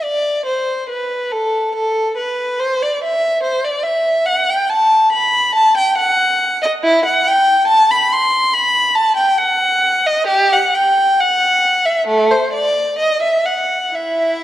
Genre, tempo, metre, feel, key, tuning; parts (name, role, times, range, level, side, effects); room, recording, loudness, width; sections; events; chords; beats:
classical, baroque-style suite movement for unaccompanied violin; 62-72 BPM; 4/4; rubato; A minor, E minor from 3.4 s; A4 = 440 Hz
rich violin; solo; 0.0-14.4 s; A3 to C6; -13 LUFS; equal
moderate concert hall reverb, RT60 2.1 s; dark, warm production; -13 LUFS; side -13 dB against mid
0.0-14.4 A section
| 0.03 0.88 1.74 2.60 | 3.44 4.29 5.14 6.00 | 6.84 7.68 8.53 9.39 | 10.31 11.22 12.11 13.02 | 13.96